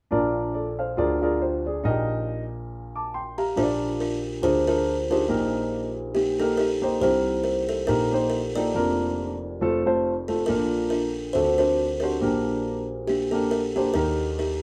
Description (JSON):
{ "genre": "gospel", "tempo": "139 BPM", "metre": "4/4", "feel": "swing 57% on 8ths", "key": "Bb major", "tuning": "A4 = 440 Hz", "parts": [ { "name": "dark grand piano", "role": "accompaniment", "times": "0.1-14.6 s", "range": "F1 to D6", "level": "-27 LUFS", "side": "equal", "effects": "none" }, { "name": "buzzing kalimba", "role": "melody", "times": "3.4-14.6 s", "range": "Bb3 to D5", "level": "-27 LUFS", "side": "equal", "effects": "none" } ], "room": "moderate studio reverb, RT60 0.6 s", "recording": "band playing live in one room", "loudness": "-25 LUFS", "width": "mono", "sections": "0.1-3.6 A section; 3.6-14.6 B section", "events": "none", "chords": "0.1 Bb; 1.0 Bb7/D; 1.8 Eb/Bb; 3.6 Bb; 4.4 Bb7/D; 5.3 Eb/Bb; 7.0 C7; 7.9 Eb/Bb; 8.8 Bb/F; 9.6 F; 10.5 Bb; 11.4 D7; 12.2 Gm/Bb; 13.9 Eb" }